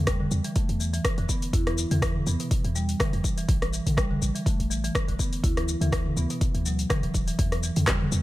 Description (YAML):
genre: afro house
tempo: 123 BPM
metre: 4/4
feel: swing 55% on 16ths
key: unclear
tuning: A4 = 441 Hz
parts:
  - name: warm 808-style bass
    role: bass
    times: 0.0-8.2 s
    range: D1 to E2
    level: -28 LUFS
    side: equal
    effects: tube saturation, sidechain pumping
  - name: marimba with medium mallets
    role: arpeggios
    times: 0.1-8.1 s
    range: B2 to E4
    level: -31 LUFS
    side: right 1 dB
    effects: sidechain pumping, low-pass filter, dub echo
  - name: afro-pop drum kit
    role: drums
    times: 0.1-8.2 s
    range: handclaps, hi-hat, rim click, shaker, toms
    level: -29 LUFS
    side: left 1 dB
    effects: overdrive
  - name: electronic kick drum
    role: drums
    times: 0.1-8.0 s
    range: none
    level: -26 LUFS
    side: equal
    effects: overdrive
room: digital ambience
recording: none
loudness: -23 LUFS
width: side -16 dB against mid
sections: 0.0-8.2 A section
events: none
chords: 0.0 N.C.; 3.5 A5; 5.4 N.C.; 7.4 Em